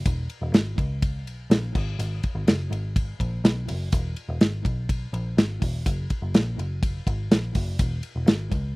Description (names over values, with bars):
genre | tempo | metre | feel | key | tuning
jangly indie pop | 124 BPM | 4/4 | straight | unclear | A4 = 436 Hz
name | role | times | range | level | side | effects
vintage muted picked electric bass | bass | 0.1-8.8 s | E1 to C#2 | -28 LUFS | equal | none
modern studio drum kit | drums | 0.1-8.6 s | crash cymbal, hi-hat, kick drum, ride cymbal, snare drum | -21 LUFS | equal | none
room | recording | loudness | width
little or no reverb | recorded outdoors, with no room sound | -22 LUFS | side -25 dB against mid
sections
0.0-8.8 A section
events
none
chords
none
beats
| 0.06 0.54 1.02 1.51 | 1.99 2.48 2.96 3.44 | 3.92 4.41 4.89 5.38 | 5.86 6.34 6.83 7.31 | 7.79 8.28 8.76